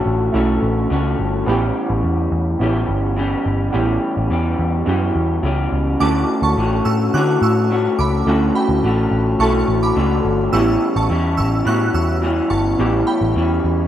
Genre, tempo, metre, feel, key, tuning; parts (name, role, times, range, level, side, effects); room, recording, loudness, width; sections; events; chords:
indie pop; 106 BPM; 4/4; straight; D major; A4 = 441 Hz
electric guitar through a small old amp; accompaniment; 0.0-13.9 s; A2 to G4; -19 LUFS; left 3 dB; wide subtle chorus, vibrato effect
warbly lo-fi synth keys; accompaniment; 0.0-13.9 s; A3 to A4; -22 LUFS; right 4 dB; chorus
vintage muted picked electric bass; bass; 0.1-13.9 s; G1 to D3; -20 LUFS; equal
glassy synth bell; second line; 6.0-13.2 s; G5 to F#6; -24 LUFS; right 3 dB; ensemble chorus, analog delay
moderate plate reverb, RT60 2.3 s; rough home demo mix; -15 LUFS; side -11 dB against mid
0.0-13.9 A section
0.0 Dmaj7; 1.5 A7; 6.0 Dmaj7; 10.5 A7